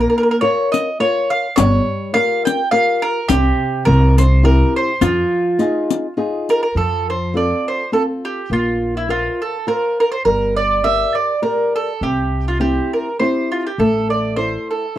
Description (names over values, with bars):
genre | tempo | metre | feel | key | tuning
italian folk, Italian serenade | 103 BPM | 3/4 | swing 55% on 8ths | F minor, F major from 6.8 s | A4 = 442 Hz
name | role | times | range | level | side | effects
mandolin | melody | 0.0-15.0 s | E4 to G5 | -18 LUFS | right 2 dB | none
flamenco guitar | accompaniment | 0.0-15.0 s | C3 to D5 | -20 LUFS | left 2 dB | none
upright bass | bass | 0.0-14.5 s | G1 to F2 | -18 LUFS | equal | none
riq | percussion | 0.7-6.6 s | none | -19 LUFS | left 9 dB | none
room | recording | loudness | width
little or no reverb | dry, close 1970s-style studio recording | -15 LUFS | side -13 dB against mid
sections
0.0-6.8 A section; 6.8-15.0 B section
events
none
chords
0.0 Bbm; 1.6 Gm7b5; 3.3 C5; 3.9 C; 5.0 Fm7; 6.8 F; 8.5 Bbsus2; 10.3 Gm; 12.0 C; 13.8 Am